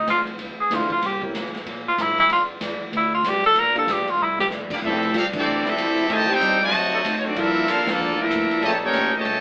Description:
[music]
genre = jazz, big band swing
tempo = 190 BPM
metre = 4/4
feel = swing 62% on 8ths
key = F major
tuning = A4 = 440 Hz
[part]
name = warm tenor saxophone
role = melody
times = 0.0-4.5 s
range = E4 to Bb4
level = -18 LUFS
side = equal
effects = none
[part]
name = upright bass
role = bass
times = 0.0-9.4 s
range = F1 to Bb2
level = -32 LUFS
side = equal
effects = none
[part]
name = picked acoustic archtop guitar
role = accompaniment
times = 0.1-9.4 s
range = F2 to A4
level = -33 LUFS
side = equal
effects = none
[part]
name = swinging big-band drum kit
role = drums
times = 0.1-9.3 s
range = crash cymbal, hi-hat, kick drum, ride cymbal, snare drum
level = -30 LUFS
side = equal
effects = none
[part]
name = warm baby grand piano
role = accompaniment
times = 0.7-1.3, 3.8-3.9 s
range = Bb3 to Bb4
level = -30 LUFS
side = equal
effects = none
[part]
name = brilliant trumpet section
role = melody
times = 4.7-9.4 s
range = Bb3 to A5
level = -20 LUFS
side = equal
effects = none
[part]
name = muted trombone section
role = second line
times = 4.7-9.4 s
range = Bb2 to G4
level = -25 LUFS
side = equal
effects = none
[part]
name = clear trombone section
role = sustained chords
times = 5.6-9.1 s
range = F#3 to A4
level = -28 LUFS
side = equal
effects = none
[sound]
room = wet studio reverb, RT60 0.6 s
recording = band playing live in one room, AM radio sound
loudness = -18 LUFS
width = side -29 dB against mid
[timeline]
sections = 0.0-4.8 A section; 4.8-9.4 B section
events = tenor saxophone solo 0.0-4.8; drum fill 4.2-4.5; band accent 5.3, 7.8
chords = 0.0 Dm9; 1.0 C7b9; 2.3 F6; 3.6 Gm7; 4.2 C7; 4.8 Fmaj13; 6.1 Am7b5; 6.7 D7b9; 7.4 Gm9; 8.6 Eb7#11

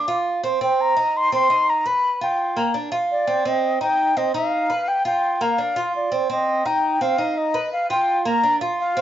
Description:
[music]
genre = latin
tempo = 169 BPM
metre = 4/4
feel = straight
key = C minor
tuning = A4 = 440 Hz
[part]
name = breathy mellow concert flute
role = melody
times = 0.0-9.0 s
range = D5 to D6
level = -20 LUFS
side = left 1 dB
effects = none
[part]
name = Cuban tres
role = arpeggios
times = 0.0-9.0 s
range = Bb3 to B4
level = -22 LUFS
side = right 2 dB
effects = none
[sound]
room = moderate large studio reverb, RT60 0.9 s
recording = dark, warm production, nothing above 7.6 kHz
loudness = -18 LUFS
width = side -11 dB against mid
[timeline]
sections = 0.0-6.3 A section; 6.3-9.0 A section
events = none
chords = 0.0 Csus24; 0.6 Cm; 1.3 Cmmaj7; 2.0 G7; 2.7 Csus24; 3.5 Cm; 4.2 F5; 4.9 G7; 5.6 Csus24; 6.3 Cm; 7.0 F5; 7.7 G7; 8.4 Bb

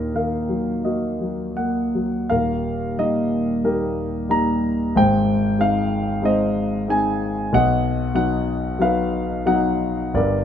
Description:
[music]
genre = classical, lyrical solo piano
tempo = 92 BPM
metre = 4/4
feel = uneven beats, rubato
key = Eb major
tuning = A4 = 441 Hz
[part]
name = dark concert grand piano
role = solo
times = 0.0-10.4 s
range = Eb1 to Bb5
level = -19 LUFS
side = left 1 dB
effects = none
[sound]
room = moderate recital hall reverb, RT60 1.6 s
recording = close, detailed microphones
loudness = -19 LUFS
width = side -9 dB against mid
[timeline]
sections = 0.0-2.3 A section; 2.3-10.4 B section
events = none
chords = 0.0 Ebm; 2.3 Eb; 5.0 Ab; 7.5 B

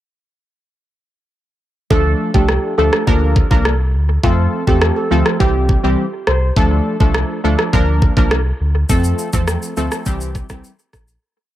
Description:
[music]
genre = dancehall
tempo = 103 BPM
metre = 4/4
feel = straight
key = F major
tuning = A4 = 436 Hz
[part]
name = steel pan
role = melody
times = 1.9-6.4 s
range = F4 to C5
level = -21 LUFS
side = right 2 dB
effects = analog delay
[part]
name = synth brass stab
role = accompaniment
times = 1.9-10.7 s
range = E3 to Bb4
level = -19 LUFS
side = equal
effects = chorus
[part]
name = sub bass with octave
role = bass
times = 1.9-11.2 s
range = Bb1 to F2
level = -17 LUFS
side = equal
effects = none
[part]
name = island pop drum kit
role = drums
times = 1.9-11.2 s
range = kick drum, rim click, shaker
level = -17 LUFS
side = equal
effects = overdrive
[sound]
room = light reverb, digital ambience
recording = echo-heavy mix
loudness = -13 LUFS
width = side -13 dB against mid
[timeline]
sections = 1.9-11.2 verse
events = fade-out 8.9-11.2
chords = 1.9 Dm; 3.1 Bb; 4.2 F; 5.4 C; 6.6 Dm; 7.7 Bb; 8.9 F; 10.1 C

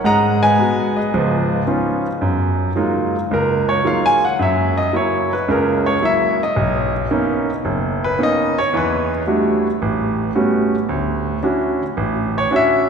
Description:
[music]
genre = solo jazz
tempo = 111 BPM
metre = 4/4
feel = swing 68% on 8ths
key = unclear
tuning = A4 = 440 Hz
[part]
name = clear grand piano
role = solo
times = 0.0-12.9 s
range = F#1 to Bb5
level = -15 LUFS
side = equal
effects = none
[sound]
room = wet cathedral reverb, RT60 4.2 s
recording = recorded in a church or concert hall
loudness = -16 LUFS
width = side -6 dB against mid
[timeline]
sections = 0.0-2.2 A section; 2.2-12.9 B section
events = grand piano solo 2.2-12.9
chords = 0.0 Abm7; 1.1 Db9; 2.2 F#maj13; 4.4 F#7; 6.6 Bmaj9; 8.7 Em11; 9.8 A13; 10.9 Dmaj9

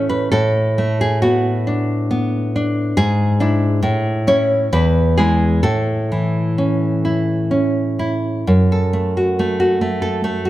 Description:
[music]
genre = romantic piece for solo classical guitar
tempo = 59-71 BPM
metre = 3/4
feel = rubato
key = A major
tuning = A4 = 440 Hz
[part]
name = nylon-string guitar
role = solo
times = 0.0-10.5 s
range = E2 to C#5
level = -15 LUFS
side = equal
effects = none
[sound]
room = moderate recital hall reverb, RT60 1.6 s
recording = none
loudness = -15 LUFS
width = side -15 dB against mid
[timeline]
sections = 0.0-8.5 A section; 8.5-10.5 B section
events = none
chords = 0.3 Bm7/A; 3.0 E7/G#; 3.8 A; 4.7 E; 5.6 A; 8.5 F#m

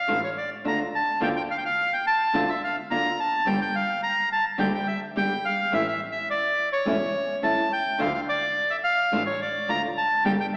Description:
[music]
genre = tango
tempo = 106 BPM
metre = 4/4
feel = rubato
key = D harmonic minor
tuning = A4 = 441 Hz
[part]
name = bandoneon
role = melody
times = 0.0-10.6 s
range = C#5 to Bb5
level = -26 LUFS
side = equal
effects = none
[part]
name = nylon-string guitar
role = accompaniment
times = 0.1-10.3 s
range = D3 to G4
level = -31 LUFS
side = equal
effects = none
[part]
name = clear double bass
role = bass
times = 0.1-10.5 s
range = E1 to D2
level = -39 LUFS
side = equal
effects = none
[sound]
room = wet scoring stage reverb, RT60 2.1 s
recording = recorded in a church or concert hall, AM radio sound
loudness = -25 LUFS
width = mono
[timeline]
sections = 0.0-10.6 A section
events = none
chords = 0.0 Dm; 1.2 Bb/D; 3.5 Gm; 5.7 A; 8.0 Dm

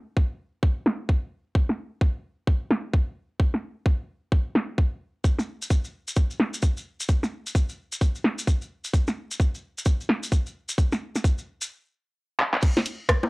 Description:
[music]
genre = UK garage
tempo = 130 BPM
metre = 4/4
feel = swing 62% on 16ths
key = none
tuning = none
[part]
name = electronic kick drum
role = drums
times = 0.2-13.2 s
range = none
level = -21 LUFS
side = equal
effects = overdrive, small room reverb
[part]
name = garage drum kit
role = drums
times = 0.9-13.3 s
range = bongos, crash cymbal, handclaps, hi-hat, rim click, snare drum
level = -23 LUFS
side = equal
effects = overdrive, low-pass filter on hats, small room reverb, low-pass filter on snare, low-pass filter on perc, low-pass filter on cymbals
[part]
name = maracas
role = percussion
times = 5.2-11.7 s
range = none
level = -33 LUFS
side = left 1 dB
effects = none
[sound]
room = little or no reverb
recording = dry, gritty hardware recording, cassette tape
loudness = -23 LUFS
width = side -27 dB against mid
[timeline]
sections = 0.0-12.6 A section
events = stop 11.7-12.6; drum fill 12.4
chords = none

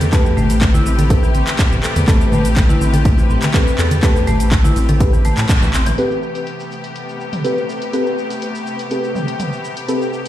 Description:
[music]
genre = afro house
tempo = 123 BPM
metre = 4/4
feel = straight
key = A minor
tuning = A4 = 441 Hz
[part]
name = bright symphonic string section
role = sustained chords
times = 0.0-10.3 s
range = C3 to B4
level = -24 LUFS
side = left 2 dB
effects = sidechain pumping
[part]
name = marimba with medium hard mallets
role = arpeggios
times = 0.0-6.0 s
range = E3 to A4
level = -22 LUFS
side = left 1 dB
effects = sidechain pumping, tape echo
[part]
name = round analog bass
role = bass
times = 0.0-5.9 s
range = G1 to A2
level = -17 LUFS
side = equal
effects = sidechain pumping
[part]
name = house drum kit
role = drums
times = 0.0-10.3 s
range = handclaps, hi-hat, shaker, toms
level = -24 LUFS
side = equal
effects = overdrive, low-pass filter on perc, low-pass filter on snare, low-pass filter on hats, low-pass filter on toms
[part]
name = congas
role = percussion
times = 0.0-6.0 s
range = none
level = -22 LUFS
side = right 1 dB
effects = none
[part]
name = deep mellow chord stab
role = stabs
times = 0.1-10.0 s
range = C4 to B4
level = -22 LUFS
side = equal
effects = chorus, sidechain pumping, tape echo
[part]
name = electronic kick drum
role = drums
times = 0.1-5.6 s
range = none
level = -14 LUFS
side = equal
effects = overdrive
[sound]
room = light reverb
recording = played on a big sound system in a bare room, stone room reverb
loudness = -13 LUFS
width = side -13 dB against mid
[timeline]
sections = 0.0-6.0 A section; 6.0-10.3 B section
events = band accent 5.5; filter sweep on drum 6.0-10.3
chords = 0.0 Am9

